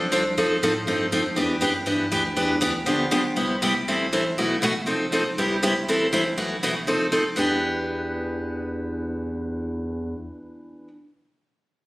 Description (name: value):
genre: acoustic string swing (jazz manouche)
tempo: 240 BPM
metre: 4/4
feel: swing 55% on 8ths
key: E minor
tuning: A4 = 441 Hz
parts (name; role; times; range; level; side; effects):
- picked steel-string acoustic guitar; accompaniment; 0.0-10.9 s; B2 to A4; -22 LUFS; equal; none
- saturated sub bass; bass; 0.0-10.1 s; F1 to A2; -33 LUFS; equal; none
room: moderate studio reverb, RT60 0.6 s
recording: recorded on a phone in the room, studio reverb, compression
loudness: -21 LUFS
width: side -20 dB against mid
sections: 0.0-3.4 A section; 3.4-7.4 B section; 7.4-9.4 C section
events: none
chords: 0.4 F9; 1.4 Em7; 2.9 G7; 3.4 Cmaj7; 3.9 Am7; 4.4 B7sus4; 4.9 F7; 5.4 Cmaj7; 5.9 Am7; 6.4 B7sus4; 6.9 F7; 7.4 Em7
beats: 0.12 | 0.38 0.62 0.87 1.12 | 1.37 1.62 1.87 2.12 | 2.37 2.62 2.87 3.12 | 3.37 3.62 3.87 4.12 | 4.37 4.62 4.87 5.12 | 5.37 5.62 5.87 6.12 | 6.38 6.62 6.88 7.13 | 7.38 7.63 7.88 8.13 | 8.38 8.63 8.88 9.13